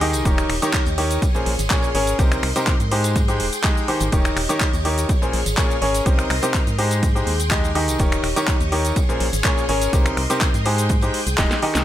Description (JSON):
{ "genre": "piano house", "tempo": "124 BPM", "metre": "4/4", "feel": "straight", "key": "Eb mixolydian", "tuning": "A4 = 440 Hz", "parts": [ { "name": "string machine, violins", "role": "sustained chords", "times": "0.0-11.8 s", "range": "G4 to Db6", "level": "-28 LUFS", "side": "equal", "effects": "ensemble chorus, sidechain pumping" }, { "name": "bright grand piano", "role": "riff", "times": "0.0-11.8 s", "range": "Bb2 to Eb5", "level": "-22 LUFS", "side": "left 1 dB", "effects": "sidechain pumping, digital delay" }, { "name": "organ-like FM bass", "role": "bass", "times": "0.0-11.8 s", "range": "Eb1 to Ab2", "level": "-23 LUFS", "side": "equal", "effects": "sidechain pumping" }, { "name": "garage drum kit", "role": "drums", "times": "0.0-11.8 s", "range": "cabasa, finger snaps, handclaps, hi-hat, snare drum", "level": "-25 LUFS", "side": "equal", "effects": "none" }, { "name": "tambourine", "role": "percussion", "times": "0.1-11.8 s", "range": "none", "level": "-35 LUFS", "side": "right 5 dB", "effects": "none" }, { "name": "electronic kick drum", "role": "drums", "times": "0.3-11.5 s", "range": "none", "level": "-20 LUFS", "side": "equal", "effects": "none" } ], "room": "digital ambience", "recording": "none", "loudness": "-17 LUFS", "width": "side -12 dB against mid", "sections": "0.0-11.8 A section", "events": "drum fill 11.4-11.8", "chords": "0.3 Eb7; 1.2 Bbm9; 2.2 Cm7; 2.9 Abmaj7; 4.1 Eb7; 5.1 Bbm9; 6.1 Cm7; 6.8 Abmaj7; 8.0 Eb7; 9.0 Bbm9; 9.9 Cm7; 10.7 Abmaj7" }